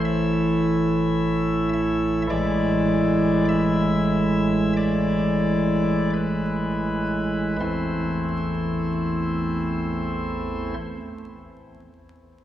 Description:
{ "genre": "classical, chorale-style piece for pipe organ", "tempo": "40-55 BPM", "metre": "4/4", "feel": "rubato", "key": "A minor", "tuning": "A4 = 440 Hz", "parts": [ { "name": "chamber organ, cornet", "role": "solo", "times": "0.0-10.7 s", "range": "A1 to E5", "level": "-20 LUFS", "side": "equal", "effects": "none" } ], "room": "wet church reverb, RT60 3.5 s", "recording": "heard from further back in the room, vinyl crackle", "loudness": "-20 LUFS", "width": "side -12 dB against mid", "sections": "0.0-7.6 A section; 7.6-12.4 B section", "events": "slowing down 0.0-7.6", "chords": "0.0 A5; 2.3 E7/A; 7.6 Am" }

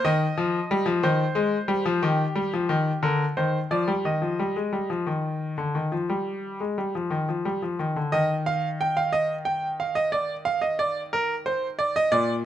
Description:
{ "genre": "classical, baroque-style two-part invention for grand piano", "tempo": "60 BPM (dotted quarters)", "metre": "12/8", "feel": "straight", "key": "Eb major", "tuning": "A4 = 440 Hz", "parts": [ { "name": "bright grand piano", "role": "solo", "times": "0.0-12.4 s", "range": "Bb2 to G5", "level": "-23 LUFS", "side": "equal", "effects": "none" } ], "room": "light reverb", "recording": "close, detailed microphones", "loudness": "-23 LUFS", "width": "side -11 dB against mid", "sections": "0.0-8.1 A section; 8.1-12.4 B section", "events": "none", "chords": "0.0 Cm/Eb; 2.0 Eb; 3.0 Bb/D; 4.0 Eb; 10.1 Cmadd9/Eb (rootless)" }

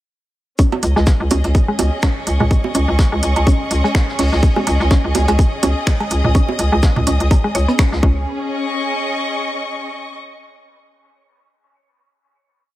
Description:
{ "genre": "minimal techno", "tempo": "125 BPM", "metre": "4/4", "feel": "swing 56% on 16ths", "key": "unclear", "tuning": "A4 = 440 Hz", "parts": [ { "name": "mallet-like synth pluck", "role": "riff", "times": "0.6-8.3 s", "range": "G#3 to C#5", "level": "-23 LUFS", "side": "equal", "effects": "chorus, sidechain pumping, dub echo" }, { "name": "electronic kick drum", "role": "drums", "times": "0.6-8.1 s", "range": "none", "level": "-15 LUFS", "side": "equal", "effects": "none" }, { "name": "jazz brush drum kit", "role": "drums", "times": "0.6-8.0 s", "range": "hi-hat, shaker, snare drum", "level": "-31 LUFS", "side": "equal", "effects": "sidechain pumping on hats, high-pass filter on hats, high-pass filter on snare, sidechain pumping on perc, high-pass filter on perc, high-pass filter on room" }, { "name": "rich studio string section", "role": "texture", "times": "0.6-10.2 s", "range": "C#4 to D#6", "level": "-23 LUFS", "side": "left 1 dB", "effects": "sidechain pumping" }, { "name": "electronic cowbell, bongos and toms", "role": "percussion", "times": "0.7-7.4 s", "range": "none", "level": "-23 LUFS", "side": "right 4 dB", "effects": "none" }, { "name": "hollow knocking FM bass", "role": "bass", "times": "0.8-8.3 s", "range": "C#2", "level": "-16 LUFS", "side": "equal", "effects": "sidechain pumping" }, { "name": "garage drum kit", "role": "drums", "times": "0.8-7.9 s", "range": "finger snaps, hi-hat", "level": "-24 LUFS", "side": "right 1 dB", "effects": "none" } ], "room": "light reverb, small room ambience", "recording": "none", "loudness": "-14 LUFS", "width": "side -15 dB against mid", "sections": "0.6-8.3 groove; 8.3-10.2 final chord", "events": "filter sweep on synth arpeggio sound 0.6-8.3", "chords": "0.6 C#5" }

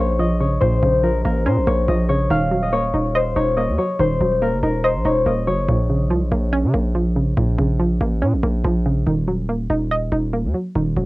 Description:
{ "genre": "hip hop, drill", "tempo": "142 BPM", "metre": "4/4", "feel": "half-time", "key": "Bb minor", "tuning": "A4 = 440 Hz", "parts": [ { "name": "concert harp", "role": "melody", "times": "0.0-7.4 s", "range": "Bb4 to F5", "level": "-21 LUFS", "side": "left 3 dB", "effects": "low-pass filter, cassette tape" }, { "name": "hollow square pluck", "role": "accompaniment", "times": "0.0-11.1 s", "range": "Bb2 to Eb5", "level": "-21 LUFS", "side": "right 2 dB", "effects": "chorus, low-pass filter, cassette tape" }, { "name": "distorted 808-style bass", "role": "bass", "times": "0.0-11.1 s", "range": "Eb1 to Db3", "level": "-20 LUFS", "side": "equal", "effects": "distortion" } ], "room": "little or no reverb", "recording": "home recording on cassette", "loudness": "-17 LUFS", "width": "side -20 dB against mid", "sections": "0.0-11.1 A section", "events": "none", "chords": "0.0 Bbm; 2.3 Ebm; 5.7 Bbm; 9.1 Ebm" }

